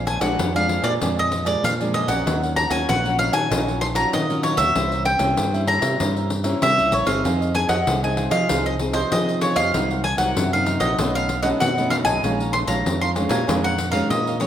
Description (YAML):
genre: samba and choro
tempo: 96 BPM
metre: 4/4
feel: straight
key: Bb minor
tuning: A4 = 442 Hz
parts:
  - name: mandolin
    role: melody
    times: 0.0-14.5 s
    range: C5 to C6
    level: -22 LUFS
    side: equal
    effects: none
  - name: cavaquinho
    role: accompaniment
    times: 0.0-14.5 s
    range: D4 to Bb5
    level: -29 LUFS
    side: right 7 dB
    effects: none
  - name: nylon-string guitar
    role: accompaniment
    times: 0.0-14.5 s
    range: F2 to Ab4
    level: -26 LUFS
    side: left 1 dB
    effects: none
  - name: fingered electric bass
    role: bass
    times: 0.0-14.5 s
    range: G1 to F3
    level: -25 LUFS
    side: equal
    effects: none
  - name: pandeiro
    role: percussion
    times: 0.1-14.5 s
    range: none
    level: -26 LUFS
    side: left 2 dB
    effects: none
room: wet large studio reverb, RT60 1.3 s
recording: none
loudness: -18 LUFS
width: side -10 dB against mid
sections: 0.0-14.5 A section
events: none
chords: 0.0 Bb7; 2.3 Ebm9; 4.8 C7b9; 7.3 Fm7; 9.7 Cm7b5; 11.0 B9; 12.2 Bbm11